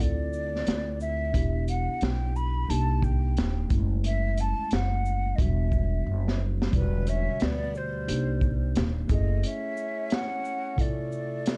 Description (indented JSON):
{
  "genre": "hip hop, jazz-hop",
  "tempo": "89 BPM",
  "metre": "4/4",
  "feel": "swing 61% on 16ths",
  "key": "E dorian",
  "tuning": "A4 = 438 Hz",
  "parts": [
    { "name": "breathy mellow jazz flute", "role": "melody", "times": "0.0-11.6 s", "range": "B4 to B5", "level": "-36 LUFS", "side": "equal", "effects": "none" },
    { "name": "mellow tine electric piano", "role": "accompaniment", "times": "0.0-11.6 s", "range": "B2 to A4", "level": "-37 LUFS", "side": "equal", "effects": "none" },
    { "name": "upright bass", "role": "bass", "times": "0.0-9.4 s", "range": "Eb1 to D2", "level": "-30 LUFS", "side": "equal", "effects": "none" },
    { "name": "crunchy breakbeat drum kit", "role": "drums", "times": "0.0-11.6 s", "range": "hi-hat, kick drum, shaker, snare drum", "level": "-31 LUFS", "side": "equal", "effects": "vintage 12-bit sampler grit" },
    { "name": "breathy tenor saxophone", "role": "second line", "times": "6.7-11.6 s", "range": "G3 to C#4", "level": "-42 LUFS", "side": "equal", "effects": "analog delay" }
  ],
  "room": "small room ambience",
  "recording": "dark, warm production",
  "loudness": "-27 LUFS",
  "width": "mono",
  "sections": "0.0-6.7 A section; 6.7-11.6 A section",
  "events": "drum fill 6.1-6.7; break 9.4-11.6",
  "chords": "0.0 Dm9; 1.3 Em7; 2.7 Cm9; 3.7 F#m9; 5.4 Em9; 8.1 Cm9; 9.1 F#m9; 10.8 Dm9"
}